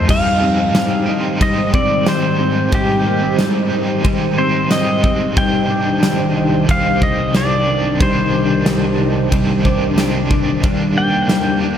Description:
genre	dream pop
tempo	91 BPM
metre	4/4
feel	straight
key	unclear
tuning	A4 = 440 Hz
part	pedal steel guitar	melody	0.0-11.6 s	G4 to G5	-20 LUFS	equal	digital delay
part	cranked stack guitar	accompaniment	0.0-11.8 s	C3 to G4	-23 LUFS	right 3 dB	overdrive, tremolo, lush chorus
part	ethereal airy pad	sustained chords	0.0-11.8 s	C2 to C5	-20 LUFS	equal	ensemble chorus, built-in reverb
part	mellow electric guitar	arpeggios	0.0-11.8 s	G3 to Eb4	-19 LUFS	left 3 dB	ensemble chorus, digital delay
part	huge arena drum kit	drums	0.1-11.4 s	crash cymbal, kick drum, ride cymbal, snare drum, tambourine	-20 LUFS	equal	none
room	moderate plate reverb, RT60 3.3 s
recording	none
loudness	-13 LUFS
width	side -9 dB against mid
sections	0.1-11.8 A section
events	none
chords	0.1 Abmaj7; 5.4 Cmadd9; 10.6 Ebmaj7

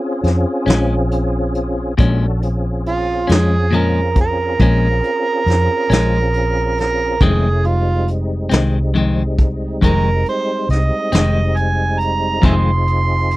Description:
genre	slow blues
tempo	46 BPM (dotted quarters)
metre	12/8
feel	straight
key	F minor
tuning	A4 = 441 Hz
part	tonewheel organ	sustained chords	0.0-13.4 s	G3 to A4	-23 LUFS	left 1 dB	slow rotary speaker, overdrive, chorus vibrato
part	vintage muted fingered electric bass	bass	0.2-13.4 s	F1 to F2	-18 LUFS	equal	none
part	vintage brush drum kit	drums	0.2-13.4 s	hi-hat, kick drum, snare drum	-16 LUFS	equal	none
part	clean electric guitar	accompaniment	0.7-12.7 s	F2 to Db4	-18 LUFS	left 3 dB	tremolo
part	overdriven harmonica	second line	2.9-13.4 s	F4 to C6	-19 LUFS	right 4 dB	none
room	little or no reverb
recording	none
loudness	-14 LUFS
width	side -18 dB against mid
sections	0.0-13.4 A section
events	harmonica solo 0.0-13.4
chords	0.0 Bbm7; 7.2 Fm7

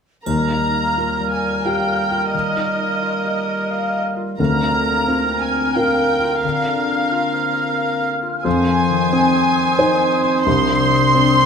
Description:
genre	cinematic, emotional film score for orchestra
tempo	88 BPM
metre	3/4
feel	rubato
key	Eb major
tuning	A4 = 440 Hz
part	dark clarinet	second line	0.2-11.5 s	G3 to D4	-25 LUFS	right 1 dB	none
part	muted symphonic violin section	melody	0.3-11.5 s	Eb5 to C6	-22 LUFS	left 1 dB	none
part	clear oboe	second line	0.3-11.5 s	Bb4 to C5	-23 LUFS	right 5 dB	none
part	mellow hollow flute section	second line	0.3-11.5 s	Eb6 to F6	-26 LUFS	left 1 dB	none
part	warm grand piano	accompaniment	0.3-11.5 s	C2 to C5	-20 LUFS	equal	none
part	concert harp	arpeggios	0.3-11.5 s	C3 to C6	-23 LUFS	left 7 dB	none
part	triangle	percussion	0.3-1.6 s	none	-39 LUFS	left 1 dB	none
room	moderate recital hall reverb, RT60 1.5 s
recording	none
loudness	-16 LUFS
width	side -6 dB against mid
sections	0.3-11.5 A section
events	none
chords	0.3 Ebadd9; 4.4 Bbadd9/D; 8.5 Fm7; 10.5 Cmadd9

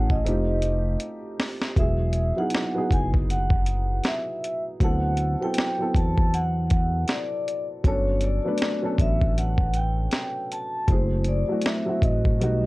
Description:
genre	lo-fi hip hop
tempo	79 BPM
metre	4/4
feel	swing 57% on 16ths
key	unclear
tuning	A4 = 440 Hz
part	vibraphone with soft mallets	melody	0.0-12.7 s	C5 to A5	-29 LUFS	equal	none
part	dark upright piano	accompaniment	0.0-12.7 s	F#3 to B4	-29 LUFS	right 1 dB	none
part	smooth gliding synth bass	bass	0.0-12.7 s	E1 to E2	-24 LUFS	equal	none
part	boom bap sampler-style drum kit	drums	0.1-12.6 s	hi-hat, kick drum, snare drum	-23 LUFS	equal	overdrive
room	light reverb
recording	cassette tape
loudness	-22 LUFS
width	side -20 dB against mid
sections	0.0-12.7 A section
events	drum fill 0.2-1.8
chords	0.2 F9; 1.8 Emaj7; 4.8 D13; 7.8 Gmaj9#11; 10.9 F#m7b5

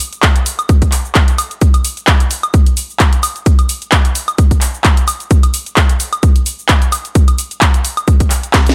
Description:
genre	house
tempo	130 BPM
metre	4/4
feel	swing 55% on 16ths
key	none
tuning	none
part	house drum kit	drums	0.0-8.7 s	cabasa, handclaps, hi-hat, snare drum, woodblock	-18 LUFS	equal	overdrive
part	electronic kick drum	drums	0.2-8.6 s	none	-13 LUFS	equal	overdrive
room	little or no reverb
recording	none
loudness	-13 LUFS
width	mono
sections	0.0-8.7 A section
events	drum fill 8.5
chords	none

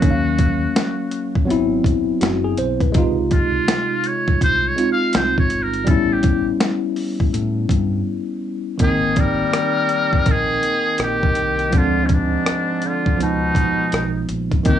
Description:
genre	hip hop, jazz-hop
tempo	82 BPM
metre	4/4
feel	swing 64% on 16ths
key	unclear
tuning	A4 = 439 Hz
part	trumpet with metal mute	melody	0.0-14.8 s	Db4 to F5	-21 LUFS	equal	none
part	tine electric piano	accompaniment	0.0-14.8 s	C3 to F5	-21 LUFS	equal	slow stereo tremolo
part	deep dub fingered electric bass	bass	0.0-14.8 s	Gb1 to A2	-24 LUFS	left 1 dB	none
part	boom bap sampler-style drum kit	drums	0.0-14.8 s	hi-hat, kick drum, rim click, snare drum	-18 LUFS	equal	none
part	breathy tenor saxophone	second line	8.8-14.8 s	Ab2 to G3	-24 LUFS	left 4 dB	none
room	light reverb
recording	dry, gritty hardware recording, small room ambience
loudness	-16 LUFS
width	side -10 dB against mid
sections	0.0-8.8 A section; 8.8-14.8 B section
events	muted trumpet solo 0.0-8.8; break 8.1-8.8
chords	0.0 Ebm9; 1.5 Ab7alt; 2.9 Dbmaj9; 5.9 A9; 8.8 Abmaj9; 11.7 Dm7b5; 13.2 Db9

